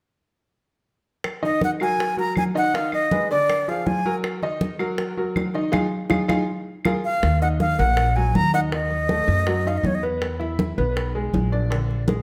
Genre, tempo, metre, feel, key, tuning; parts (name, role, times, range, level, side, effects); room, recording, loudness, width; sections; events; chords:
latin, salsa; 160 BPM; 4/4; straight; Eb minor; A4 = 437 Hz
bongos; percussion; 1.2-12.2 s; -33 LUFS; equal
claves; percussion; 1.2-6.9 s; -34 LUFS; equal
congas; percussion; 1.2-12.2 s; -29 LUFS; equal
bright upright piano; accompaniment; 1.4-12.2 s; D3 to E5; -29 LUFS; equal
breathy bright concert flute; melody; 1.5-4.1, 7.0-10.0 s; Db5 to Bb5; -24 LUFS; equal
upright bass; bass; 7.2-12.2 s; Bb1 to F#2; -25 LUFS; equal
moderate large studio reverb, RT60 1.3 s; -22 LUFS; mono
1.2-7.2 A section; 7.2-12.2 B section
band accent 5.7-7.2; drum fill 6.5-7.2
1.2 Ebm; 2.7 Abm6; 3.5 Bb7; 4.2 Ebm; 5.7 Ebsus24; 6.5 Bb5; 7.2 Ebm; 8.7 B7/D#; 10.2 E; 11.7 Bb7